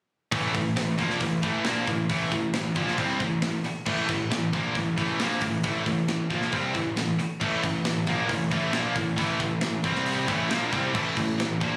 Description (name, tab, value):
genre	heavy metal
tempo	136 BPM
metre	4/4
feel	straight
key	A minor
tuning	A4 = 441 Hz
part	heavy high-gain guitar	riff	0.3-11.8 s	A2 to C4	-32 LUFS	equal	distortion
part	high-gain distorted guitar	riff	0.3-11.8 s	A2 to C4	-31 LUFS	equal	distortion
part	fuzz picked electric bass	bass	0.3-11.8 s	A1 to C2	-34 LUFS	equal	overdrive
part	tight metal drum kit	drums	0.3-11.7 s	crash cymbal, hi-hat, kick drum, snare drum	-33 LUFS	equal	none
room	little or no reverb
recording	recorded on a phone in the room, club reverb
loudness	-27 LUFS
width	mono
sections	0.3-11.8 A section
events	none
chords	0.3 Am; 9.8 C5; 10.3 Am